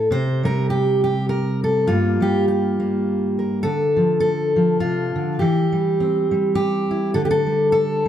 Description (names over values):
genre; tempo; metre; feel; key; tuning
folk, solo fingerstyle acoustic guitar; 102 BPM; 3/4; swing 56% on 8ths; G dorian; A4 = 441 Hz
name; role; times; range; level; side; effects
fingerpicked steel-string acoustic guitar; solo; 0.0-8.1 s; G2 to C5; -17 LUFS; equal; none
room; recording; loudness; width
wet large studio reverb, RT60 1.4 s; dark, warm production; -17 LUFS; side -10 dB against mid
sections
0.0-3.6 A section; 3.6-8.1 B section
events
none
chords
0.1 C5; 1.9 Gm; 3.6 Dm7; 5.4 C/E; 7.1 Gsus2/D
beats
| 0.11 0.70 1.29 | 1.88 2.46 3.05 | 3.63 4.22 4.81 | 5.39 5.98 6.56 | 7.15 7.73